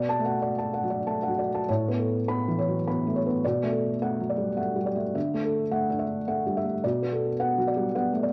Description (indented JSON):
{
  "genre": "neoclassical minimalist piano",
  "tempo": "105 BPM",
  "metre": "3/4",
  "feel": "uneven beats, rubato",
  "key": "B minor",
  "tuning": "A4 = 440 Hz",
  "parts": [
    { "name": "felt-muted upright piano", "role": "solo", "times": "0.0-8.3 s", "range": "A2 to B5", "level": "-27 LUFS", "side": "equal", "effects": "cassette tape" }
  ],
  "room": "wet spring reverb, RT60 1.3 s, studio ambience",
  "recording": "home recording on cassette",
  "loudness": "-27 LUFS",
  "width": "mono",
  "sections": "0.0-1.7 A section; 1.7-8.3 B section",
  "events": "none",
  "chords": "0.0 Bm7; 1.7 Aadd9; 3.4 Bm7; 5.1 Dadd9; 6.8 Bm7"
}